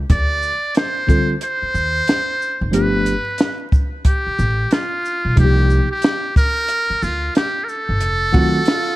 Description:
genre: hip hop, jazz-hop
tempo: 91 BPM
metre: 4/4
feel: swing 62% on 16ths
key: unclear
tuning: A4 = 440 Hz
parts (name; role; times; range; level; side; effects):
- upright bass; bass; 0.0-8.4 s; F1 to Eb2; -20 LUFS; equal; none
- trumpet with metal mute; melody; 0.1-9.0 s; F4 to D5; -20 LUFS; right 1 dB; none
- compact cocktail drum kit; drums; 0.1-8.9 s; hi-hat, kick drum, shaker, snare drum; -17 LUFS; equal; none
- tine electric piano; accompaniment; 1.1-8.6 s; C3 to A4; -18 LUFS; equal; overdrive, fast stereo tremolo
- breathy tenor saxophone; second line; 8.3-9.0 s; F4 to Gb4; -23 LUFS; right 4 dB; none
room: light reverb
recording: dark, warm production, vinyl crackle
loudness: -15 LUFS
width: side -17 dB against mid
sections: 0.0-9.0 A section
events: none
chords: 0.1 Dm7; 2.7 G7; 5.4 Cm7; 8.0 F7b9

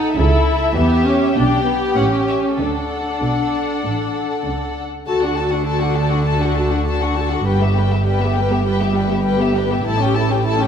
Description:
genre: quick classical-period movement for string orchestra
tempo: 100 BPM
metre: 4/4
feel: straight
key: D major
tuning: A4 = 438 Hz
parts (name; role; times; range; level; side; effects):
- dark studio violin section; melody; 0.0-10.7 s; E5 to A5; -25 LUFS; left 7 dB; none
- dark studio violin section; second line; 0.0-10.7 s; F#4 to B4; -23 LUFS; left 2 dB; none
- dark symphonic viola section; accompaniment; 0.0-10.7 s; G3 to F#4; -20 LUFS; left 1 dB; none
- warm chamber double bass section; bass; 0.0-10.7 s; G1 to E2; -22 LUFS; right 2 dB; none
- warm symphonic cello section; bass; 0.0-10.7 s; G2 to E3; -23 LUFS; right 2 dB; none
room: wet scoring stage reverb, RT60 1.6 s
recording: none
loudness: -15 LUFS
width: side -8 dB against mid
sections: 0.0-5.1 A section; 5.1-10.7 B section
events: none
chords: 0.2 A/C#; 1.4 G/B; 2.0 A7; 2.6 D; 7.5 Em/G; 9.9 A7

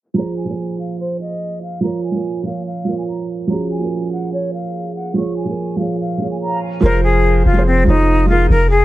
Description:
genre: hip hop, drill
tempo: 144 BPM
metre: 4/4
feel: half-time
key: F phrygian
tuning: A4 = 440 Hz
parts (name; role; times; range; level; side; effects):
- felt-muted upright piano; accompaniment; 0.1-8.5 s; F3 to Db5; -20 LUFS; right 3 dB; none
- silver concert flute; melody; 0.2-8.8 s; C4 to Db6; -20 LUFS; left 1 dB; digital delay
- long sustained 808-style bass; bass; 6.8-8.8 s; F1; -14 LUFS; left 1 dB; none
room: studio reverb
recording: low-pass filter, nothing above 10.3 kHz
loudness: -16 LUFS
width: side -16 dB against mid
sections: 0.2-6.8 A section; 6.8-8.8 B section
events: filter sweep 0.2-6.8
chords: 0.2 Fm; 1.8 Bbm/F; 3.5 Gbsus2/F; 5.2 Db/F; 6.8 Fm

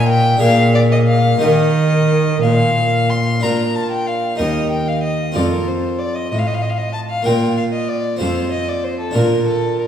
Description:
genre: classical, baroque-style sonata movement with continuo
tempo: 62 BPM (dotted quarters)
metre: 6/8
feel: rubato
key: Eb major, Bb major from 3.4 s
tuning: A4 = 440 Hz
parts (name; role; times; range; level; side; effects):
- warm violin; melody; 0.0-9.9 s; A4 to C6; -20 LUFS; left 2 dB; none
- harpsichord; accompaniment; 0.0-9.9 s; Eb2 to Bb4; -18 LUFS; right 1 dB; none
- warm cello; bass; 0.0-9.9 s; Eb2 to Eb3; -18 LUFS; equal; none
room: wet recital hall reverb, RT60 1.6 s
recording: heard from further back in the room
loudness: -14 LUFS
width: side -9 dB against mid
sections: 0.0-3.4 A section; 3.4-9.9 A section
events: none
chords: 0.4 Bb7; 1.4 Eb; 3.4 Bb; 4.4 Eb; 5.4 F; 7.3 Bb5; 8.2 F; 9.2 Bb

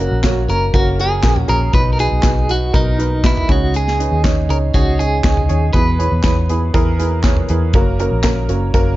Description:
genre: piano-driven pop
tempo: 120 BPM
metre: 4/4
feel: straight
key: F# mixolydian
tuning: A4 = 439 Hz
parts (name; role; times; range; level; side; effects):
- clean electric guitar; melody; 0.0-6.7 s; D#4 to B4; -20 LUFS; right 1 dB; tremolo
- clear upright piano; accompaniment; 0.0-9.0 s; B2 to C#5; -20 LUFS; right 3 dB; none
- vintage muted fingered electric bass; bass; 0.0-9.0 s; F#1 to E2; -18 LUFS; equal; none
- modern studio drum kit; drums; 0.2-8.9 s; handclaps, hi-hat, kick drum, snare drum, toms; -16 LUFS; equal; none
- group handclap; percussion; 8.2-8.4 s; none; -33 LUFS; left 9 dB; none
room: little or no reverb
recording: dark, warm production, nothing above 7.5 kHz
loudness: -13 LUFS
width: side -16 dB against mid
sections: 0.0-9.0 A section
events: none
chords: 0.0 F#; 1.7 B; 3.5 C#sus2; 5.7 E; 7.7 F#

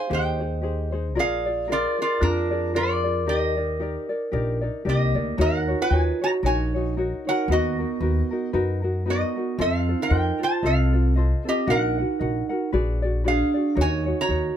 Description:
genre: Hawaiian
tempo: 114 BPM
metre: 4/4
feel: swing 57% on 8ths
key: Eb major, Eb minor from 5.4 s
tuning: A4 = 440 Hz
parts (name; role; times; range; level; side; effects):
- lap resonator guitar; melody; 0.0-14.6 s; D4 to Bb5; -26 LUFS; equal; none
- vibraphone with soft mallets; second line; 0.0-14.6 s; Bb3 to Eb5; -28 LUFS; right 5 dB; none
- tenor ukulele; accompaniment; 0.0-14.6 s; Eb4 to Gb5; -28 LUFS; left 3 dB; none
- upright bass; bass; 0.1-14.5 s; Bb1 to F#2; -24 LUFS; left 1 dB; none
room: moderate booth ambience, RT60 0.2 s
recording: none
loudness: -21 LUFS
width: side -9 dB against mid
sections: 0.0-5.4 A section; 5.4-14.6 B section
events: none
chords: 0.0 Abmaj7; 1.2 Bb7; 3.3 Ebmaj7; 5.4 Ebm7; 7.5 Bmaj7/D#; 9.6 F7; 11.7 Ebm/Bb; 12.7 Bb7b9b13; 13.8 Ebm7

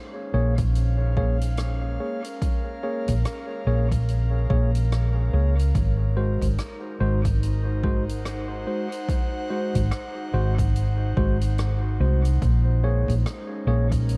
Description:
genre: ambient dub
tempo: 72 BPM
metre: 4/4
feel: swing 60% on 16ths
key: Bb minor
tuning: A4 = 439 Hz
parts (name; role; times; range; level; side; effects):
- airy breathy pad; sustained chords; 0.0-14.2 s; Ab3 to Gb5; -37 LUFS; equal; chorus
- bright tine electric piano; stabs; 0.3-13.9 s; Ab3 to Db5; -33 LUFS; equal; dub echo
- hollow-body short-scale fingered electric bass; bass; 0.3-14.2 s; Ab1 to Db2; -24 LUFS; equal; none
- electronic kick drum; drums; 0.6-14.1 s; none; -28 LUFS; equal; none
- soft-mallet drum kit; drums; 0.6-14.2 s; hi-hat, rim click; -43 LUFS; equal; dub echo
room: studio ambience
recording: dark, warm production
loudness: -24 LUFS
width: mono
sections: 0.0-14.2 A section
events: fade-in on analog synth pad 0.0-14.2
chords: 0.0 Bbm7; 5.8 Ab7; 12.4 Bbm7

